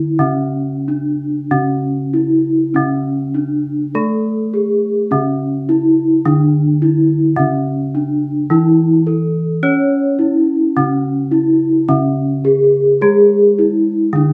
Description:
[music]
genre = gamelan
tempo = 90-106 BPM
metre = 4/4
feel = straight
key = C# pelog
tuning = A4 = 440 Hz
[part]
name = gamelan-type bronze metallophone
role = melody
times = 0.0-14.3 s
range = C#4 to C#5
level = -17 LUFS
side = equal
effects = none
[part]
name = gamelan-type bronze metallophone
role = accompaniment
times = 0.0-14.3 s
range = C#3 to C#4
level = -20 LUFS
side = equal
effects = none
[sound]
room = wet studio reverb, RT60 0.5 s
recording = band playing live in one room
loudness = -15 LUFS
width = mono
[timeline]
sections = 0.0-5.1 A section; 5.1-14.3 B section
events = none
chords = none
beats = | 0.20 0.86 1.50 2.13 | 2.75 3.36 3.95 4.53 | 5.10 5.67 6.23 6.80 | 7.36 7.93 8.49 9.06 | 9.62 10.19 10.75 11.32 | 11.88 12.45 13.01 13.58 | 14.14

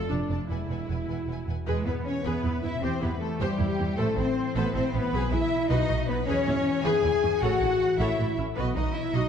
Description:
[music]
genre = cinematic, heroic adventure film score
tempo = 104 BPM (dotted quarters)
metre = 6/8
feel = straight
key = E major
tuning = A4 = 440 Hz
[part]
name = clear symphonic viola section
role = accompaniment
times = 0.0-9.3 s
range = B3 to D#5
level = -34 LUFS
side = right 1 dB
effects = none
[part]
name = warm French horn section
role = sustained chords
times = 0.0-9.3 s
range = G3 to G#4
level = -29 LUFS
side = left 4 dB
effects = none
[part]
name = concert harp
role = arpeggios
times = 0.0-9.3 s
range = E2 to D6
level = -35 LUFS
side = left 7 dB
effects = none
[part]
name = rich symphonic violin section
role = melody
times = 0.1-9.3 s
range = G4 to A5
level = -38 LUFS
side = left 2 dB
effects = none
[part]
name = rich symphonic violin section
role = second line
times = 0.1-9.3 s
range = G4 to G#5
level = -38 LUFS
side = left 3 dB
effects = none
[part]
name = clear symphonic double bass section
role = bass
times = 0.1-9.2 s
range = E1 to E2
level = -30 LUFS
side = right 3 dB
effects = none
[part]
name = rich symphonic cello section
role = bass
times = 0.1-9.3 s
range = E2 to G#4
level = -34 LUFS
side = right 2 dB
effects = none
[part]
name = mellow flute section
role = second line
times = 1.7-9.3 s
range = G4 to G#5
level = -36 LUFS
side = equal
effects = none
[sound]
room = wet scoring stage reverb, RT60 2.1 s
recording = dark, warm production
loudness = -24 LUFS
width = side -7 dB against mid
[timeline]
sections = 0.0-1.7 A section; 1.7-9.3 B section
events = none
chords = 0.0 Dm/F; 0.5 Eadd9; 1.7 E; 2.8 C/E; 4.0 Am; 5.1 E/B; 5.7 B; 6.3 E6; 7.4 A; 8.6 B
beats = | 0.50 1.09 | 1.68 2.26 | 2.83 3.40 | 3.98 4.55 | 5.12 5.70 | 6.27 6.84 | 7.42 7.99 | 8.57 9.14

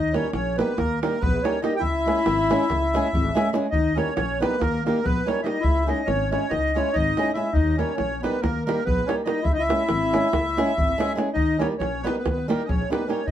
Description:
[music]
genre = balkan folk, Balkan wedding band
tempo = 283 BPM (eighths)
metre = 9/8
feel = straight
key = Eb phrygian dominant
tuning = A4 = 443 Hz
[part]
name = accordion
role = melody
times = 0.0-13.3 s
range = Bb4 to G5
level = -26 LUFS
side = right 1 dB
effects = light tremolo tuning
[part]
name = mellow clarinet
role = second line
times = 0.0-13.3 s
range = Bb3 to G4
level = -28 LUFS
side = left 4 dB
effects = none
[part]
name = upright bass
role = bass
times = 0.0-13.3 s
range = Ab1 to Eb2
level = -27 LUFS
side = left 1 dB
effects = none
[part]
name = flamenco guitar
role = accompaniment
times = 0.1-13.2 s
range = G3 to Ab4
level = -26 LUFS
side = right 2 dB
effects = none
[part]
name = davul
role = percussion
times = 0.1-13.3 s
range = none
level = -28 LUFS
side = right 1 dB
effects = none
[sound]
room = moderate studio reverb, RT60 0.6 s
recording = band playing live in one room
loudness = -20 LUFS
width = side -11 dB against mid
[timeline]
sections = 0.0-13.3 A section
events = none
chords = 0.0 Eb; 1.8 Dbm; 3.7 Eb; 5.6 Dbm; 7.5 Eb; 9.5 Dbm; 11.4 Eb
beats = 0.11 0.32 0.53 0.75 0.96 1.17 1.39 1.60 | 1.81 2.02 2.24 2.45 2.66 2.87 3.09 3.30 3.51 | 3.72 3.94 4.15 4.36 4.57 4.79 5.00 5.21 5.42 | 5.63 5.85 6.06 6.27 6.48 6.70 6.91 7.12 7.33 | 7.54 7.76 7.97 8.18 8.39 8.61 8.82 9.03 9.24 | 9.45 9.66 9.88 10.09 10.30 10.51 10.72 10.94 11.15 | 11.36 11.57 11.79 12.00 12.21 12.42 12.63 12.85 13.06 | 13.27

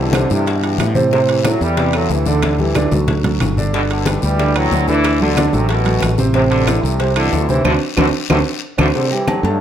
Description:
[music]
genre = latin, salsa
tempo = 184 BPM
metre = 4/4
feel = straight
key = unclear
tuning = A4 = 441 Hz
[part]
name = brilliant trombone section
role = melody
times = 0.0-9.6 s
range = F#2 to G3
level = -20 LUFS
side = equal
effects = none
[part]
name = warm concert grand piano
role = accompaniment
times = 0.0-9.6 s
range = C3 to A5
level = -18 LUFS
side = right 2 dB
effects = none
[part]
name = fretless electric bass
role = bass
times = 0.0-9.6 s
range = G1 to A2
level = -18 LUFS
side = left 1 dB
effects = none
[part]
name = bongos and cowbell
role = percussion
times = 0.1-9.6 s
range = none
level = -28 LUFS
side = left 7 dB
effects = none
[part]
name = claves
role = percussion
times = 0.1-9.4 s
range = none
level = -28 LUFS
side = right 3 dB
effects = none
[part]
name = congas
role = percussion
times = 0.1-9.6 s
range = none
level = -22 LUFS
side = left 2 dB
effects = none
[part]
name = guiro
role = percussion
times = 0.1-8.9 s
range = none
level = -31 LUFS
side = left 10 dB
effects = none
[part]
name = timbales and agogo bells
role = percussion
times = 0.1-9.4 s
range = none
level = -26 LUFS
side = right 5 dB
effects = none
[sound]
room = moderate large studio reverb, RT60 0.8 s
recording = none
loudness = -13 LUFS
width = side -10 dB against mid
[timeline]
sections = 0.0-9.0 A section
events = drum fill 2.4-3.7, 8.0-9.0; band accent 7.6-9.0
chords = 0.0 Cmaj7; 1.1 Am; 2.4 Dsus4; 3.1 D; 3.7 G6; 5.0 D; 6.3 Amadd9; 7.6 D7; 9.0 D7sus4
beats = 0.14 0.47 0.80 | 1.12 1.45 1.78 2.10 | 2.43 2.76 3.08 3.41 | 3.74 4.06 4.39 4.71 | 5.04 5.37 5.69 6.02 | 6.35 6.67 7.00 7.32 | 7.65 7.97 8.30 8.63 | 8.95 9.28 9.60

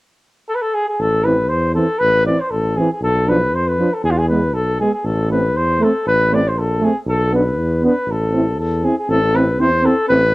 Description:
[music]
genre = balkan folk, Balkan brass band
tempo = 118 BPM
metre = 2/4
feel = swing 55% on 16ths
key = A harmonic minor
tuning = A4 = 440 Hz
[part]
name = warm flugelhorn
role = melody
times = 0.5-10.3 s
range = F4 to D5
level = -17 LUFS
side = left 1 dB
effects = cassette tape, plate reverb
[part]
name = warm tuba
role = bass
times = 1.0-10.3 s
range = A1 to F2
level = -19 LUFS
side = equal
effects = none
[part]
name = mellow trombone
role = accompaniment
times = 1.2-10.2 s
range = E3 to C4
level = -19 LUFS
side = right 2 dB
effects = cassette tape, plate reverb
[part]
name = mellow euphonium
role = accompaniment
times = 1.3-10.2 s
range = B3 to E4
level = -24 LUFS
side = left 1 dB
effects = cassette tape, plate reverb
[sound]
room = moderate small room reverb, RT60 0.5 s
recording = home recording on cassette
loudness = -14 LUFS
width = side -20 dB against mid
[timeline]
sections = 1.0-9.1 A section; 9.1-10.3 A section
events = none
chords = 0.0 N.C.; 1.0 Am; 3.0 Bdim; 4.0 E; 5.1 Am; 7.1 Bmadd11; 8.1 Am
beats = 0.49 | 1.00 1.50 | 2.01 2.52 | 3.02 3.53 | 4.04 4.54 | 5.05 5.56 | 6.06 6.57 | 7.08 7.58 | 8.09 8.59 | 9.10 9.60 | 10.11

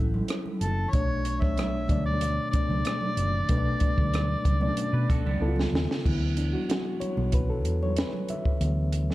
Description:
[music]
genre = lush 1970s-style soul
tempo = 94 BPM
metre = 4/4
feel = straight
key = unclear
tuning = A4 = 440 Hz
[part]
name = mellow reed electric piano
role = accompaniment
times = 0.0-9.1 s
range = B2 to E5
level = -30 LUFS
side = left 1 dB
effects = fast tremolo
[part]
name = hollow-body short-scale fingered electric bass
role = bass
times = 0.0-9.1 s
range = F#1 to B2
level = -28 LUFS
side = equal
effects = none
[part]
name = congas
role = percussion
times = 0.1-9.1 s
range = none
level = -35 LUFS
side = right 3 dB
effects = none
[part]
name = compact cocktail drum kit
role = drums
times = 0.3-9.1 s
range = crash cymbal, hi-hat, kick drum, rim click, snare drum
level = -28 LUFS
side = equal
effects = none
[part]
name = overdriven harmonica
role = melody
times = 0.6-5.4 s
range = A4 to E5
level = -33 LUFS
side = equal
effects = none
[part]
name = electric guitar through a small old amp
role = riff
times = 4.9-5.6 s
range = B3 to B4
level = -40 LUFS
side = right 7 dB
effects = wide subtle chorus
[sound]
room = small room ambience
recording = dark, warm production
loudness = -24 LUFS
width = side -17 dB against mid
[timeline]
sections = 0.0-6.1 A section; 6.1-9.1 B section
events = drum fill 5.4-6.1; reed electric piano solo 6.1-9.1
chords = 0.0 F#m7; 0.9 Bm9; 5.4 C#7b13; 6.1 D69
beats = 0.29 | 0.93 1.57 2.21 2.85 | 3.50 4.14 4.78 5.42 | 6.06 6.70 7.34 7.98 | 8.62

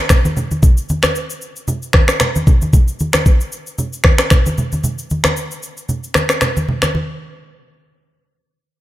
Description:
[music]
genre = afrobeats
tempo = 114 BPM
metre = 4/4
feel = swing 55% on 16ths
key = none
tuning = none
[part]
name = afro-pop drum kit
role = drums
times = 0.1-6.9 s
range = finger snaps, kick drum, rim click, shaker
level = -13 LUFS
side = equal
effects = none
[part]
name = congas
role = percussion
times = 0.1-7.2 s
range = none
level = -20 LUFS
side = equal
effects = none
[sound]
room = little or no reverb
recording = none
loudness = -13 LUFS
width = side -15 dB against mid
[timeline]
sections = 0.0-6.9 A section; 6.9-8.8 B section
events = none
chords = none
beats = 0.10 | 0.63 1.16 1.68 2.21 | 2.73 3.26 3.79 4.31 | 4.84 5.37 5.89 6.42 | 6.94

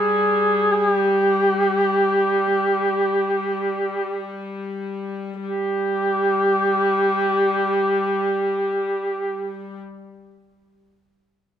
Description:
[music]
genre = caucasian folk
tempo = free time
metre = none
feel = none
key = unclear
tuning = A4 = 440 Hz
[part]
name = warm duduk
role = melody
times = 0.0-9.8 s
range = G4 to Ab4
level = -19 LUFS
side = right 1 dB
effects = none
[part]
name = rich chamber string section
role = drone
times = 0.0-9.8 s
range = G3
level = -27 LUFS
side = left 6 dB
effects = none
[sound]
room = light reverb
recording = close, detailed microphones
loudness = -18 LUFS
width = side -9 dB against mid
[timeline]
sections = 0.0-5.4 A section; 5.4-10.7 B section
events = slowing down 0.0-5.4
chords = none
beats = free time

